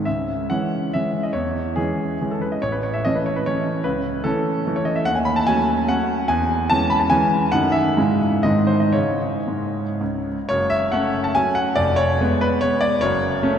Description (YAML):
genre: classical, romantic triple-time dance for piano with dotted rhythms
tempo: 110-160 BPM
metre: 3/4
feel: rubato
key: C# minor, F# minor from 10.5 s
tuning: A4 = 440 Hz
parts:
  - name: warm concert grand piano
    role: solo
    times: 0.0-13.6 s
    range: F1 to B5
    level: -18 LUFS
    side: equal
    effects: none
room: wet cathedral reverb, RT60 5.1 s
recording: none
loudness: -18 LUFS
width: side -8 dB against mid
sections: 0.1-10.5 A section; 10.5-13.6 B section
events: none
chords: 0.1 C#m; 1.3 C#m/E; 2.6 A; 3.8 A/C#; 5.1 D#m7b5; 6.3 C#m/E; 7.5 D#dim/F#; 8.0 C#m/G#; 8.4 G#; 8.9 C#5; 10.5 F#m; 11.8 Fdim; 13.0 F#m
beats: | 0.06 0.50 0.94 | 1.35 1.77 2.21 | 2.63 3.06 3.46 | 3.84 4.25 4.67 | 5.07 5.48 5.90 | 6.30 6.71 7.12 | 7.53 7.97 8.44 | 8.95 9.48 10.01 | 10.50 10.93 11.36 | 11.77 12.20 12.62 | 13.01 13.42